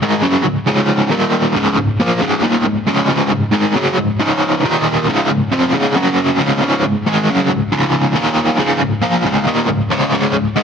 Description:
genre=rock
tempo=136 BPM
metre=4/4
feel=straight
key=Db major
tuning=A4 = 441 Hz
part: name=cranked stack guitar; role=solo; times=0.0-10.6 s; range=Db2 to Bb3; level=-13 LUFS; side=equal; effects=overdrive, tremolo, tape echo
room=moderate studio reverb, RT60 0.8 s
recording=none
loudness=-13 LUFS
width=side -7 dB against mid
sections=0.0-10.6 A section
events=none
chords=0.0 Db5; 1.1 Eb5; 1.6 Db5; 4.6 Eb5; 5.1 Db; 6.0 Gb5; 6.4 Db5; 8.2 Eb5; 8.6 Db5

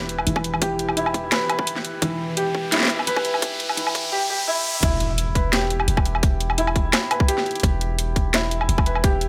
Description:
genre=half-time drum and bass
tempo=171 BPM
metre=4/4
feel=swing 53% on 16ths, half-time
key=E minor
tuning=A4 = 441 Hz
part: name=bowed-like drone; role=sustained chords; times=0.0-4.1 s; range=E3 to B4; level=-39 LUFS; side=equal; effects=none
part: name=felt-muted upright piano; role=arpeggios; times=0.0-9.3 s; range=E3 to B4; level=-27 LUFS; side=equal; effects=low-pass filter, delay
part: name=long sustained 808-style bass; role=bass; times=0.0-9.3 s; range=E1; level=-28 LUFS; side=equal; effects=none
part: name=riser and impact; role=sound effects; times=1.9-6.2 s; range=none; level=-31 LUFS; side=equal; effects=none
part: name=drum and bass drum kit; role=drums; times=0.1-9.3 s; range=hi-hat, snare drum, woodblock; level=-25 LUFS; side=equal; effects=overdrive, studio reverb
part: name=electronic kick drum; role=drums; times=0.4-9.1 s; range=none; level=-23 LUFS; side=equal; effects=overdrive, high-pass filter on kick, studio reverb
room=moderate digital room reverb, RT60 0.9 s, digital ambience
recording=high-pass filter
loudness=-22 LUFS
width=mono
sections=0.0-4.8 A section; 4.8-9.3 B section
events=build-up 0.0-4.8; filter sweep on felt piano 0.0-4.8; filter sweep 0.0-4.8; riser 1.9-4.8; drop 4.8-9.3; impact 4.8-6.2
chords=0.0 Em

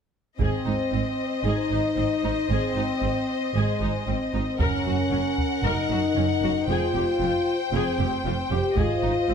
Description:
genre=cinematic, epic orchestral film score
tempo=115 BPM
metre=4/4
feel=straight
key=Ab major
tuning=A4 = 440 Hz
part: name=clear symphonic violin section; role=melody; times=0.4-9.3 s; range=Eb5 to G5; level=-31 LUFS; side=left 4 dB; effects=none
part: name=rich symphonic violin section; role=second line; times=0.4-9.3 s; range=Bb4 to C5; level=-34 LUFS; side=left 3 dB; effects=none
part: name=rich symphonic viola section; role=accompaniment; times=0.4-9.3 s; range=C4 to Bb4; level=-33 LUFS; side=equal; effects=none
part: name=mellow French horn section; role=sustained chords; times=0.4-9.3 s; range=Ab3 to G4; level=-26 LUFS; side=left 3 dB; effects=none
part: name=rich symphonic cello section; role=bass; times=0.4-9.3 s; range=F2 to Ab2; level=-31 LUFS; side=right 4 dB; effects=none
part: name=rich symphonic double bass section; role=bass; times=0.4-9.3 s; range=F1 to Ab1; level=-29 LUFS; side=right 4 dB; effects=none
part: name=taiko ensemble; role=drums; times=0.4-1.4, 4.6-9.3 s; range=none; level=-28 LUFS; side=equal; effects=none
room=light reverb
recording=close, detailed microphones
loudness=-22 LUFS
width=side -7 dB against mid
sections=0.4-9.3 A section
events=none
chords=0.4 Ab; 4.6 Gb; 6.7 Fmadd9; 8.8 Ab

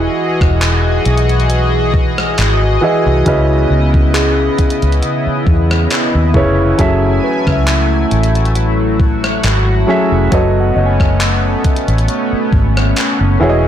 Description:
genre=contemporary R&B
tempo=68 BPM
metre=4/4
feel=swing 54% on 16ths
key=unclear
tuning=A4 = 440 Hz
part: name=warm concert grand piano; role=accompaniment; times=0.0-13.7 s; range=C#3 to E5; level=-18 LUFS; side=right 1 dB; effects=none
part: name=chorused pulse-width pad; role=sustained chords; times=0.0-13.7 s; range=C#3 to G#5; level=-17 LUFS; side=left 1 dB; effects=sidechain pumping
part: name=vintage muted fingered electric bass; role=bass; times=0.0-13.7 s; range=E1 to E2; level=-14 LUFS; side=equal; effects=none
part: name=gated 80s digital drum machine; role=drums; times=0.4-13.2 s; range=handclaps, hi-hat, kick drum, rim click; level=-16 LUFS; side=equal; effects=gated reverb
part: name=soft synth bell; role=texture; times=2.8-13.3 s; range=F#4 to G#5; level=-23 LUFS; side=left 2 dB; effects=chorus, ping-pong delay
room=little or no reverb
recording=blown-out, overdriven recording, overdrive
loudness=-11 LUFS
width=side -10 dB against mid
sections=0.0-13.7 A section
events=none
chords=0.0 Emaj9; 3.3 C#m9; 6.8 F#m9; 10.3 B9/F#

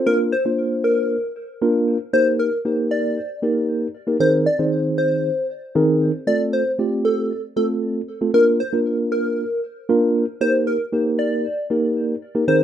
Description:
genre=pop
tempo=116 BPM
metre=4/4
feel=straight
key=Bb major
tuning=A4 = 442 Hz
part: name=mellow tine electric piano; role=accompaniment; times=0.0-12.6 s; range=Eb3 to C5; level=-19 LUFS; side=right 1 dB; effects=medium stereo tremolo
part: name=plucky unison lead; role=melody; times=0.1-12.6 s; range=A4 to D5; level=-21 LUFS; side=left 1 dB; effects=tape echo
room=wet studio reverb, RT60 0.6 s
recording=rough home demo mix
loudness=-18 LUFS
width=side -10 dB against mid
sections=0.1-12.6 A section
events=none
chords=0.1 Bb; 2.1 Eb; 4.2 Abadd9/Eb; 6.3 F; 8.3 Bb; 10.4 Eb

